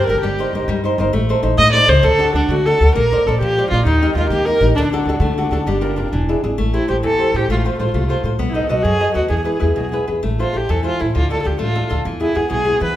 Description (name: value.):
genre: italian folk, Italian serenade.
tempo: 132 BPM (dotted quarters).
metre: 6/8.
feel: rubato.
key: A minor from 6.6 s.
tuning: A4 = 442 Hz.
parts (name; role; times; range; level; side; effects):
warm viola; melody; 0.0-13.0 s; D4 to Eb5; -18 LUFS; equal; none.
flamenco guitar; accompaniment; 0.0-12.9 s; B2 to D#5; -20 LUFS; left 1 dB; none.
upright bass; bass; 0.1-12.9 s; E1 to E3; -19 LUFS; equal; none.
room: moderate recital hall reverb, RT60 1.3 s.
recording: minimal, uncompressed stereo recording.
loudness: -14 LUFS.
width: side -13 dB against mid.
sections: 0.0-6.6 A section; 6.6-13.0 B section.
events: none.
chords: 0.2 Cm7/G; 1.1 Adim; 2.0 D; 2.9 Bbadd9; 3.9 Eb; 4.7 D; 5.7 Gm7; 6.1 E7; 6.6 Am7; 7.5 F/A; 8.4 B7; 9.3 E; 10.2 Am; 11.1 Dm; 12.1 E.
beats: | 0.22 0.68 | 1.13 1.58 | 2.03 2.49 | 2.94 3.40 | 3.85 4.30 | 4.75 5.20 | 5.65 6.12 | 6.58 7.04 | 7.50 7.94 | 8.39 8.85 | 9.31 9.77 | 10.23 10.69 | 11.15 11.60 | 12.05 12.51.